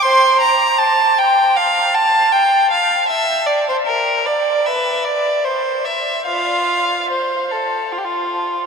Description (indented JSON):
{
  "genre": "classical, baroque-style suite movement for unaccompanied violin",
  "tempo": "71-79 BPM",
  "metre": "4/4",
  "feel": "rubato",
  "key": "F major",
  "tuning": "A4 = 442 Hz",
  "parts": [
    { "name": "rich violin", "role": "solo", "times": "0.0-8.7 s", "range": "F4 to C6", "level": "-14 LUFS", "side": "equal", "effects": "none" }
  ],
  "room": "wet huge ambient reverb, RT60 8.7 s",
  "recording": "in a vast, echoing space",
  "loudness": "-14 LUFS",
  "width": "side -5 dB against mid",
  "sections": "0.0-8.7 A section",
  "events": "none",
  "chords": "none"
}